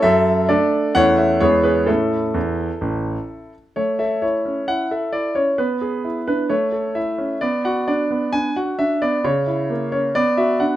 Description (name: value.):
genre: classical-period piano sonatina.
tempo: 131 BPM.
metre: 4/4.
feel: straight.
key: A major.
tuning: A4 = 442 Hz.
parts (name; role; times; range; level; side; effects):
clear concert grand piano; solo; 0.0-10.8 s; A1 to G#5; -17 LUFS; equal; none.
room: light reverb.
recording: none.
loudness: -17 LUFS.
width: side -13 dB against mid.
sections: 0.0-3.8 A section; 3.8-10.8 B section.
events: none.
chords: 0.0 D/F#; 0.9 A/E; 1.4 E; 1.9 A; 5.6 E7/B; 6.5 A; 7.4 Bm; 9.2 C#m6; 10.2 Bm.